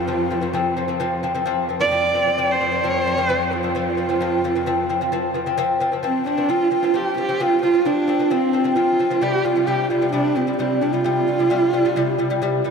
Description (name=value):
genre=mongolian traditional, Mongolian folk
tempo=132 BPM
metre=4/4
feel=straight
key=unclear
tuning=A4 = 440 Hz
part: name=warm horsehead fiddle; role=melody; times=0.0-12.6 s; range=C4 to D5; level=-20 LUFS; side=right 3 dB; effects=none
part: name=lute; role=arpeggios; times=0.0-12.7 s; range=C3 to C4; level=-22 LUFS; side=left 3 dB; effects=none
part: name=rich cello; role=drone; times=0.0-5.6 s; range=F2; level=-29 LUFS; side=left 2 dB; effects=stereo widening
room=wet huge ambient reverb, RT60 7.1 s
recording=in a vast, echoing space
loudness=-18 LUFS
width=side -5 dB against mid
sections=0.0-5.6 A section; 5.6-12.7 B section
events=none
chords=0.0 F5; 9.2 C5